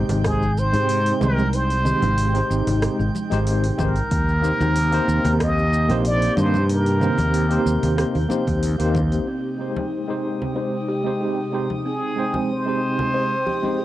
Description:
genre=sunset chillout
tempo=93 BPM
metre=4/4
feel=straight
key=unclear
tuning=A4 = 440 Hz
part: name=bright tine electric piano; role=accompaniment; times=0.0-13.8 s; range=Ab3 to G5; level=-25 LUFS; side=moving between left 4 dB and right 4 dB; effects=medium stereo tremolo, auto-pan, cassette tape, analog delay
part: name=ethereal airy pad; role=sustained chords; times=0.0-13.8 s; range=C3 to G5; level=-28 LUFS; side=left 1 dB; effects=ensemble chorus, built-in reverb, cassette tape
part: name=fretless electric bass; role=bass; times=0.0-9.2 s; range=Ab1 to Ab2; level=-21 LUFS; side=equal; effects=none
part: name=drifting glass-harmonics texture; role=texture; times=0.0-13.8 s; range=Eb6 to G6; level=-38 LUFS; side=right 2 dB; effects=chorus, built-in reverb, cassette tape
part: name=deep house drum kit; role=drums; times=0.1-9.2 s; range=congas, hi-hat, rim click, shaker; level=-29 LUFS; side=equal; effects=overdrive, cassette tape
part: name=congas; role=percussion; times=0.1-13.8 s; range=none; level=-31 LUFS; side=left 1 dB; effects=none
part: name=electronic kick drum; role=drums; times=0.2-9.1 s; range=none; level=-28 LUFS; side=equal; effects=overdrive, cassette tape
part: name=trumpet with plunger mute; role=melody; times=0.3-8.0, 11.9-13.8 s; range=Ab4 to Eb5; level=-24 LUFS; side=equal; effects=cassette tape
part: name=buzzing kalimba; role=arpeggios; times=9.3-13.8 s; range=C4 to C5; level=-28 LUFS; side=right 1 dB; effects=low-pass filter, cassette tape, analog delay
room=moderate booth ambience, RT60 0.2 s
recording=home recording on cassette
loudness=-18 LUFS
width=side -14 dB against mid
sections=0.0-9.3 A section; 9.3-13.8 B section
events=filter sweep on kalimba 9.3-13.8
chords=0.0 Abmaj7; 4.1 Eb6; 9.3 Abmaj7

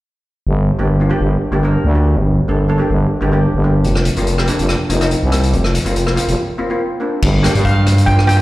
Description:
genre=calypso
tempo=142 BPM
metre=4/4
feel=swing 53% on 16ths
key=unclear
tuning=A4 = 440 Hz
part: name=growling FM bass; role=bass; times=0.5-8.4 s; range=F1 to G2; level=-13 LUFS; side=equal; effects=none
part: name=steel pan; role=accompaniment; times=0.8-8.3 s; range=Bb3 to Bb4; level=-20 LUFS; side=equal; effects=plate reverb, slapback echo
part: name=vintage drum kit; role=drums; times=3.8-8.4 s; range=crash cymbal, hi-hat, kick drum, rim click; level=-21 LUFS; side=equal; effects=none
part: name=congas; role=percussion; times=7.3-8.4 s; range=none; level=-26 LUFS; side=right 2 dB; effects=none
part: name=steel pan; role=melody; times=7.7-8.4 s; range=F5 to G5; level=-18 LUFS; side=right 1 dB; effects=tape echo
room=light reverb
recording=live gig heard through the venue's PA, recital hall reverb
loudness=-13 LUFS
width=side -17 dB against mid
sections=0.5-7.2 A section; 7.2-8.4 B section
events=break 6.4-7.2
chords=0.5 Gm; 3.8 Fsus4; 7.2 Gm7

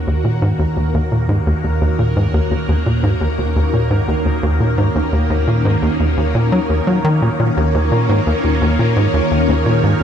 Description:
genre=ambient, sequencer-driven space music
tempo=86 BPM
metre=4/4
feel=straight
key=Eb minor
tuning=A4 = 440 Hz
part: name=phased string machine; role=sustained chords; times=0.0-10.0 s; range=Eb3 to Bb4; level=-20 LUFS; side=equal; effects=ensemble chorus, phaser
part: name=tight sequencer bass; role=riff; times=0.0-10.0 s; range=Eb2 to Gb3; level=-16 LUFS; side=equal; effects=ping-pong delay
part: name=analog drone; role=bass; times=0.0-10.0 s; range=Eb2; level=-24 LUFS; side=equal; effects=chorus
part: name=bubbling stepped-filter texture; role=texture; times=0.0-10.0 s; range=Bb3 to Db5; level=-26 LUFS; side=equal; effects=chorus, built-in reverb
room=moderate huge ambient reverb, RT60 7.7 s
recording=none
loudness=-14 LUFS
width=side -8 dB against mid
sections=0.0-10.0 A section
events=fade-in on string machine 0.0-10.0; fade-in on synth texture 0.0-10.0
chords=0.0 Ebm7

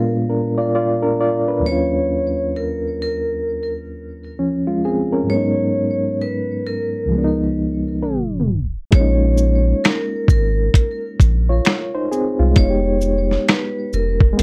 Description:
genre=lo-fi hip hop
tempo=66 BPM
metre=4/4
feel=swing 61% on 16ths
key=Bb minor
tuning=A4 = 436 Hz
part: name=vibraphone with hard mallets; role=melody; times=0.0-14.4 s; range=Bb4 to Db5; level=-26 LUFS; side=equal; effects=tape echo
part: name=bright reed electric piano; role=accompaniment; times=0.0-14.4 s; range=Db2 to D5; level=-22 LUFS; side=equal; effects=fast tremolo
part: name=soft dub sub bass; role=bass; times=8.9-14.4 s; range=F1 to C2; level=-19 LUFS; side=equal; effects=none
part: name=dusty soul sampler-style drum kit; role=drums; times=8.9-14.4 s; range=finger snaps, hi-hat, kick drum, shaker, snare drum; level=-16 LUFS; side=equal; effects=none
room=moderate studio reverb, RT60 0.5 s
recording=dark, warm production, tape stop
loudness=-18 LUFS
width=mono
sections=0.0-8.9 A section; 8.9-14.4 B section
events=tape stop 8.0-8.9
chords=0.0 Bb7b9; 1.7 Ebm9; 5.3 Abm7; 7.1 Db9; 8.9 Bbm11; 12.6 Fm7b5

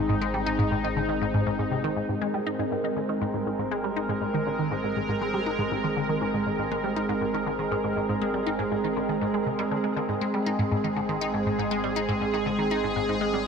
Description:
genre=ambient, sequencer-driven space music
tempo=120 BPM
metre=4/4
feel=straight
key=Ab major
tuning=A4 = 439 Hz
part: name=sweeping resonant pad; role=sustained chords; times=0.0-13.5 s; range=Ab3 to Bb4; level=-27 LUFS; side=equal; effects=chorus
part: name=round analog bass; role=bass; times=0.0-13.5 s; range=Ab1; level=-42 LUFS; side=equal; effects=none
part: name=resonant blip pluck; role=riff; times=0.1-13.4 s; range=Ab2 to Eb4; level=-29 LUFS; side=equal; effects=phaser, ping-pong delay
part: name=pulsing gated texture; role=texture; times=2.4-13.5 s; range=Ab4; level=-36 LUFS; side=right 4 dB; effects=chorus, built-in reverb
room=wet huge ambient reverb, RT60 7.9 s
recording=none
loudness=-24 LUFS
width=side -6 dB against mid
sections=0.0-2.1 A section; 2.1-13.5 B section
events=fade-in on analog synth bass 2.1-13.5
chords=0.0 Ab; 2.1 Abadd9

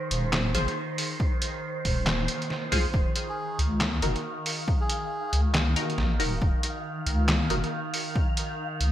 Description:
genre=deep dubstep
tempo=138 BPM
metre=4/4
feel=swing 62% on 16ths, half-time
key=Eb dorian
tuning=A4 = 440 Hz
part: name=overtone-sweeping drone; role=sustained chords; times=0.0-8.9 s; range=Eb3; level=-35 LUFS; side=equal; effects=chorus, built-in reverb, phaser
part: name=wind-like tuned noise texture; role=texture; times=0.0-8.9 s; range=C5 to F5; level=-37 LUFS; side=right 1 dB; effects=built-in reverb
part: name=deep soft wobble bass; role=bass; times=0.1-8.9 s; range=Eb1 to Db2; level=-26 LUFS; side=equal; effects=chorus
part: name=trip hop sampler-style drum kit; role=drums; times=0.1-8.9 s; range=handclaps, hi-hat, snare drum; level=-29 LUFS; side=equal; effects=overdrive, studio reverb, gated reverb
part: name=filtered dub chord stab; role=stabs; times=0.5-7.7 s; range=Eb4 to C5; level=-34 LUFS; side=left 1 dB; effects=phaser, wide subtle chorus, dub echo
part: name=electronic kick drum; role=drums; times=1.2-8.3 s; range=none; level=-26 LUFS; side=equal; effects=overdrive, studio reverb
part: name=melodica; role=melody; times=3.3-5.4 s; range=Ab4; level=-36 LUFS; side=equal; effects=dub echo
room=light reverb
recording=bright 1980s-style digital production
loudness=-24 LUFS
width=side -12 dB against mid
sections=0.0-8.9 A section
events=none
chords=0.0 Fm (rootless); 2.9 Ebm

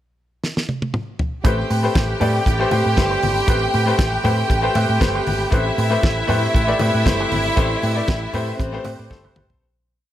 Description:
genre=disco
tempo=118 BPM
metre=4/4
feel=straight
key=A minor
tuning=A4 = 440 Hz
part: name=damped 70s drum kit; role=drums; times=0.4-9.6 s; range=hi-hat, kick drum, snare drum, toms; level=-22 LUFS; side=equal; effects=none
part: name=rich studio violin section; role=second line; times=1.4-9.6 s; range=C4 to G5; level=-22 LUFS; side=right 1 dB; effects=none
part: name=clear grand piano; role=accompaniment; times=1.4-9.6 s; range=A3 to E5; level=-24 LUFS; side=left 5 dB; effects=none
part: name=electric guitar with an envelope filter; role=accompaniment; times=1.4-9.5 s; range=C4 to B4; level=-29 LUFS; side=right 4 dB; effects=none
part: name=hollow-body short-scale fingered electric bass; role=bass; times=1.4-9.5 s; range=G1 to A2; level=-22 LUFS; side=equal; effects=none
part: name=congas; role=percussion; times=1.5-9.5 s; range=none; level=-29 LUFS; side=left 3 dB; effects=none
room=light reverb, studio ambience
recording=none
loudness=-16 LUFS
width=side -12 dB against mid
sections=0.0-1.4 pickup bar; 1.4-9.6 groove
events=drum fill 0.4-1.4, 9.1-9.6; grand piano fill 4.5-5.5; fade-out 7.6-9.6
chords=0.0 N.C.; 1.4 Am9

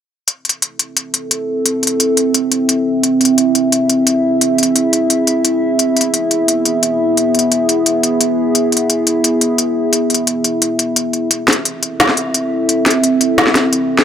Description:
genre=half-time drum and bass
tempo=174 BPM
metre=4/4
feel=half-time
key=A harmonic minor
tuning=A4 = 439 Hz
part: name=dark analog pad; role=sustained chords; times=1.2-14.0 s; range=B3 to E5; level=-14 LUFS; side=equal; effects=chorus, phaser
part: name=organic electronic drum kit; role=drums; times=0.3-14.0 s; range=hi-hat, snare drum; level=-13 LUFS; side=left 1 dB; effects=none
room=wet echo chamber reverb, RT60 1.9 s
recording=none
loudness=-12 LUFS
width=side -9 dB against mid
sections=0.3-14.0 A section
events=none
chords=0.3 Am; 5.8 E; 11.3 Am

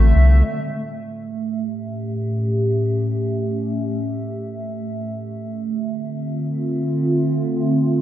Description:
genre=ambient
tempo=free time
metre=none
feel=none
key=unclear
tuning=A4 = 441 Hz
part: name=warbly tape-like pad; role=sustained chords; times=0.0-8.0 s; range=A2 to E5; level=-21 LUFS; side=right 1 dB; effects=chorus, built-in reverb, phaser
room=moderate recital hall reverb, RT60 1.4 s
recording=none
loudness=-20 LUFS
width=side -12 dB against mid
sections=0.5-8.0 A section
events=filter sweep on ambient pad 0.5-8.0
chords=0.5 A7; 5.4 Dm9

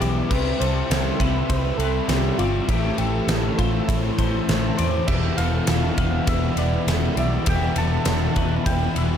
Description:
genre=rock, shoegaze and dream pop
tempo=100 BPM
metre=4/4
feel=straight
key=unclear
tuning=A4 = 444 Hz
part: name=soft struck synth lead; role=melody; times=0.0-9.2 s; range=E4 to A5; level=-29 LUFS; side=equal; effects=chorus, phaser, tape echo
part: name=glassy FM pad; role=sustained chords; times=0.0-9.2 s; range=B4 to E6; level=-37 LUFS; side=right 1 dB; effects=ensemble chorus, built-in reverb
part: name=twelve-string electric guitar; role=arpeggios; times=0.0-9.2 s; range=G4 to D5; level=-34 LUFS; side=left 8 dB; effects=ensemble chorus, tape echo
part: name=cranked stack guitar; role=riff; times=0.0-9.2 s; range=E2 to C4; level=-32 LUFS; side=equal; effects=overdrive
part: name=overdriven electric guitar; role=riff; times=0.0-9.2 s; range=E2 to E4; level=-30 LUFS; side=right 12 dB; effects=reverse reverb
part: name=thick fuzz guitar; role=riff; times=0.0-9.2 s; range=E2 to C4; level=-26 LUFS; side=left 7 dB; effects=distortion, analog chorus
part: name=vintage muted fingered electric bass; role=bass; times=0.0-9.2 s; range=E1 to E2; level=-24 LUFS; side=right 1 dB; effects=none
part: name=huge arena drum kit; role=drums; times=0.0-9.1 s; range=crash cymbal, kick drum, ride cymbal, snare drum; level=-25 LUFS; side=equal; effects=none
room=light reverb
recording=none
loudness=-19 LUFS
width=side -8 dB against mid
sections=0.0-9.2 A section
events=none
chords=0.3 Cmaj7; 2.7 Am7; 5.1 Em7

